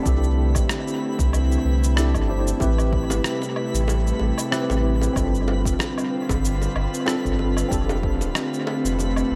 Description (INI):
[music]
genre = sunset chillout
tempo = 94 BPM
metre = 4/4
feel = swing 55% on 16ths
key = A minor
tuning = A4 = 440 Hz
[part]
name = tine electric piano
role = accompaniment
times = 0.0-9.4 s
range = C4 to C5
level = -29 LUFS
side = equal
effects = overdrive, dub echo
[part]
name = airy breathy pad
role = sustained chords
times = 0.0-9.4 s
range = C3 to F4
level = -31 LUFS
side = equal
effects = chorus, vintage 12-bit sampler grit
[part]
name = twinkling granular texture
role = texture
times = 0.0-9.4 s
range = B4 to B5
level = -37 LUFS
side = equal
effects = built-in reverb
[part]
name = warm sub bass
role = bass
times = 0.1-9.4 s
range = D1 to C2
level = -24 LUFS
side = equal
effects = none
[part]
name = electronic cabasa, woodblock and rim click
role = drums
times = 0.1-9.3 s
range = none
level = -33 LUFS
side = equal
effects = studio reverb, dub echo
[part]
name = electronic kick drum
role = drums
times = 0.1-8.2 s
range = none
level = -29 LUFS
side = equal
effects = studio reverb
[part]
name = bongos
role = percussion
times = 2.6-9.1 s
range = none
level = -37 LUFS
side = equal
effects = none
[sound]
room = moderate spring reverb, RT60 2.1 s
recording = echo-heavy mix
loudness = -22 LUFS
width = mono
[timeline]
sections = 0.0-9.4 A section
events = none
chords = 0.1 C69; 2.6 Am7; 5.2 G7sus4; 7.7 F6